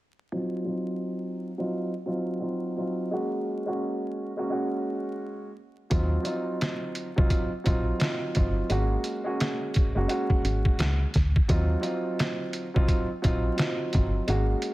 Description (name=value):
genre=hip hop, boom-bap hip-hop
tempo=86 BPM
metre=4/4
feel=swing 60% on 16ths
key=Eb dorian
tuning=A4 = 440 Hz
part: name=dark grand piano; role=accompaniment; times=0.3-14.7 s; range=Gb3 to Gb4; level=-29 LUFS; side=right 1 dB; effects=high-pass filter, low-pass filter
part: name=woody FM bass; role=bass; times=5.9-14.6 s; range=Gb1 to Eb2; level=-26 LUFS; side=equal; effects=none
part: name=trip hop sampler-style drum kit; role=drums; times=5.9-14.7 s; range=hi-hat, kick drum, snare drum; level=-26 LUFS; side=equal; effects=none
room=light reverb, digital ambience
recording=vinyl crackle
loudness=-25 LUFS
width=side -18 dB against mid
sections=0.3-11.5 A section; 11.5-14.7 B section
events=filter sweep on grand piano 0.3-11.5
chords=0.3 Ebm69; 3.1 Ab9sus4; 5.9 Ebm69; 8.7 Ab9sus4; 11.5 Ebm69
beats=| 0.33 1.03 1.73 2.42 | 3.12 3.82 4.52 5.21 | 5.91 6.61 7.31 8.01 | 8.70 9.40 10.10 10.80 | 11.49 12.19 12.89 13.59 | 14.28